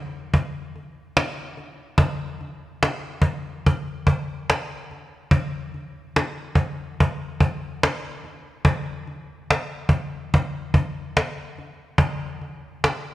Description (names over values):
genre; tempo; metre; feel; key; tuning
hip hop; 72 BPM; 4/4; swing 56% on 16ths; none; none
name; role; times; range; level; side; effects
cajon; drums; 0.3-13.0 s; none; -22 LUFS; equal; none
room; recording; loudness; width
moderate echo chamber reverb, RT60 2.2 s; cassette tape; -22 LUFS; side -16 dB against mid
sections
0.0-8.6 A section; 8.6-13.1 B section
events
none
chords
none